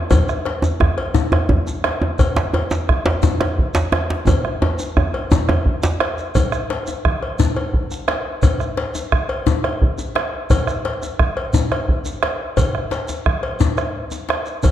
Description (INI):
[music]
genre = west african traditional, West African drum ensemble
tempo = 116 BPM (dotted quarters)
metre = 12/8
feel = straight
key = none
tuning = none
[part]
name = bombo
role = percussion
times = 0.1-14.7 s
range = none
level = -20 LUFS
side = right 2 dB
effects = none
[part]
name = cowbell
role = percussion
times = 0.1-14.7 s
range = none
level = -26 LUFS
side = left 2 dB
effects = none
[part]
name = djembe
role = percussion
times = 0.1-14.7 s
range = none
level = -23 LUFS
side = left 4 dB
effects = none
[part]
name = djembe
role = percussion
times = 0.1-6.0 s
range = none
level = -19 LUFS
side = right 1 dB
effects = none
[part]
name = shekere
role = percussion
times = 0.1-14.7 s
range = none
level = -26 LUFS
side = right 1 dB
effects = none
[sound]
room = wet recital hall reverb, RT60 1.5 s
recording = dark, warm production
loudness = -17 LUFS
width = side -11 dB against mid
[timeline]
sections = 0.0-6.4 A section; 6.4-14.7 B section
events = drum fill 4.3-6.4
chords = none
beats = | 0.11 0.63 1.15 1.67 | 2.19 2.71 3.23 3.75 | 4.27 4.79 5.31 5.83 | 6.35 6.87 7.39 7.91 | 8.43 8.95 9.47 9.98 | 10.50 11.02 11.54 12.05 | 12.57 13.09 13.60 14.12 | 14.64